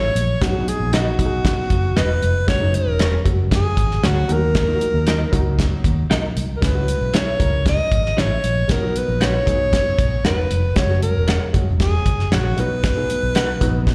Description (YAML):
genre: uptempo 1960s-style soul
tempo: 116 BPM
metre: 4/4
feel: straight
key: unclear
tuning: A4 = 441 Hz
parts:
  - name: breathy alto saxophone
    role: melody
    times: 0.0-13.9 s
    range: F#4 to D#5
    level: -25 LUFS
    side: equal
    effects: none
  - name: vintage muted fingered electric bass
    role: bass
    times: 0.0-13.9 s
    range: E1 to D#2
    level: -23 LUFS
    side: equal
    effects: none
  - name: cloth-damped thuddy drum kit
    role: drums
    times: 0.2-13.9 s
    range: hi-hat, kick drum, snare drum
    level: -23 LUFS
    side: equal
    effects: none
  - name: warm upright piano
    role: accompaniment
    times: 0.4-13.9 s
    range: F#3 to A#4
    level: -30 LUFS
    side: equal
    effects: slapback echo
  - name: electric guitar through a small old amp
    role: stabs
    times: 0.9-13.5 s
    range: C#4 to F#5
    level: -29 LUFS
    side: equal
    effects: tremolo, slapback echo
room: little or no reverb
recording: live gig heard through the venue's PA, recital hall reverb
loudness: -19 LUFS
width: mono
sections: 0.0-13.9 A section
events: none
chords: 0.4 B; 2.5 F#sus2; 4.3 D#m; 6.6 C#m; 8.7 B; 10.8 F#sus2; 12.6 B